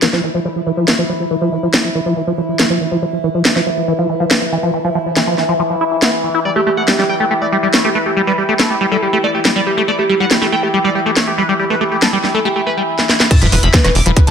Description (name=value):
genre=psychedelic trance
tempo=140 BPM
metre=4/4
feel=straight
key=unclear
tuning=A4 = 437 Hz
part: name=overtone-sweeping drone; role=sustained chords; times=0.2-14.3 s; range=E3 to E4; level=-20 LUFS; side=equal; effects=chorus, built-in reverb, sidechain pumping
part: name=liquid acid bass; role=riff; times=0.0-14.3 s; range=E3 to E4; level=-17 LUFS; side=equal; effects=chorus, auto-pan, sidechain pumping, dub echo
part: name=garage drum kit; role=drums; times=0.0-14.3 s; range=crash cymbal, hi-hat, rim click, snare drum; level=-15 LUFS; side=equal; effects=none
part: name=overdriven synth lead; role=melody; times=6.5-14.3 s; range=G4 to D6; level=-18 LUFS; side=equal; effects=phaser, cassette tape, sidechain pumping, ping-pong delay
part: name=electronic kick drum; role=drums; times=13.3-14.3 s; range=none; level=-10 LUFS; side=equal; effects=none
part: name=sub drop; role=sound effects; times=13.4-14.3 s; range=none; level=-20 LUFS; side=equal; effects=none
part: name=tight sequencer bass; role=bass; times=13.4-14.3 s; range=E1 to F1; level=-14 LUFS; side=equal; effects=none
room=moderate digital room reverb, RT60 1.2 s, digital ambience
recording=none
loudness=-12 LUFS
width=side -7 dB against mid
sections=0.0-13.3 A section; 13.3-14.3 B section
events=filter sweep on acid bass 0.0-13.3; drum fill 13.0-13.3; drop 13.3-14.3; impact 13.3-14.3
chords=0.0 E5; 6.5 Emadd11; 13.3 E5